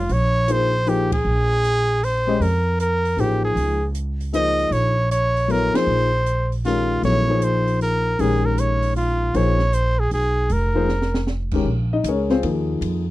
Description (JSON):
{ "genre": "modal jazz", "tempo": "156 BPM", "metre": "3/4", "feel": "swing 65% on 8ths", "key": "Bb dorian", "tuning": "A4 = 440 Hz", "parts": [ { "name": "bright trumpet", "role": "melody", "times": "0.0-11.3 s", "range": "F4 to Eb5", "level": "-21 LUFS", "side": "right 1 dB", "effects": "none" }, { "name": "upright bass", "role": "bass", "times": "0.0-13.1 s", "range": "F1 to F2", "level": "-22 LUFS", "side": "right 1 dB", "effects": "none" }, { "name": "open jazz drum kit", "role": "drums", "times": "0.1-12.9 s", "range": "crash cymbal, hi-hat, kick drum, ride cymbal, snare drum", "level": "-31 LUFS", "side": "right 1 dB", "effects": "none" }, { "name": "warm grand piano", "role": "accompaniment", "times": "0.5-13.0 s", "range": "Eb3 to Eb5", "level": "-23 LUFS", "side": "left 4 dB", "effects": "none" } ], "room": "little or no reverb", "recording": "dry, close 1970s-style studio recording", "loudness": "-18 LUFS", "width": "side -16 dB against mid", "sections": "0.0-11.7 A section; 11.7-13.1 B section", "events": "band accent 1.1, 5.7; drum fill 10.9-11.3", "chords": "0.0 Bbm9" }